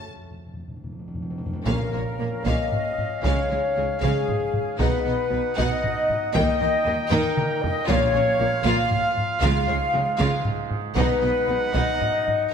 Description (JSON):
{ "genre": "cinematic, epic orchestral film score", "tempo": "77 BPM (dotted quarters)", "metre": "6/8", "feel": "straight", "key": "unclear", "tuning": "A4 = 440 Hz", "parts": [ { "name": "warm symphonic violin section", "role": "melody", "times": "0.0-12.0 s", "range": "Ab4 to G5", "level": "-35 LUFS", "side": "left 3 dB", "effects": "none" }, { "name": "warm symphonic violin section", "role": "second line", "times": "0.0-12.0 s", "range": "G3 to F4", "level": "-34 LUFS", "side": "left 2 dB", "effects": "none" }, { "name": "clear trombone section", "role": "sustained chords", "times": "0.0-12.5 s", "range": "F#2 to F4", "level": "-34 LUFS", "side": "right 6 dB", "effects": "none" }, { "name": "warm French horn section", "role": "sustained chords", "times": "0.0-12.5 s", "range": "Ab4 to F5", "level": "-25 LUFS", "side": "left 4 dB", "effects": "none" }, { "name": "timpani", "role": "percussion", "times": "0.1-2.4, 7.9-8.6 s", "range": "F2 to Bb2", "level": "-33 LUFS", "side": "right 1 dB", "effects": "none" }, { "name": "bright large flute ensemble", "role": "second line", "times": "1.7-12.5 s", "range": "Ab4 to F5", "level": "-30 LUFS", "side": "left 2 dB", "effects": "none" }, { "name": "warm symphonic viola section", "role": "accompaniment", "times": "1.7-12.0 s", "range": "Ab3 to B3", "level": "-33 LUFS", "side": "equal", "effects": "none" }, { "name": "clear trumpet", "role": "stabs", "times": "1.7-12.5 s", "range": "F5 to G5", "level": "-31 LUFS", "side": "right 4 dB", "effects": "none" }, { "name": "rich symphonic cello section", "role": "bass", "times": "1.7-11.8 s", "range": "Bb2 to Eb3", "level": "-29 LUFS", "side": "right 3 dB", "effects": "none" }, { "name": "warm symphonic double bass section", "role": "bass", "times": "1.7-11.8 s", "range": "Bb1 to Eb2", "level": "-30 LUFS", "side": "right 4 dB", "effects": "none" }, { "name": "taiko ensemble", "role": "drums", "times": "1.7-12.5 s", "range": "none", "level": "-28 LUFS", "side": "equal", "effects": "none" } ], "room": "wet scoring stage reverb, RT60 1.9 s", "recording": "none", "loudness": "-20 LUFS", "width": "side -7 dB against mid", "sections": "0.0-1.7 A section; 1.7-12.5 B section", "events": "break 0.1-1.7; timpani fill 0.1-1.7; drum fill 0.9-1.7, 7.1-7.9", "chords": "0.1 N.C.; 1.7 Bbm; 3.2 Db; 4.8 B; 6.3 Eb; 7.9 Bbm; 9.4 Db; 11.0 B" }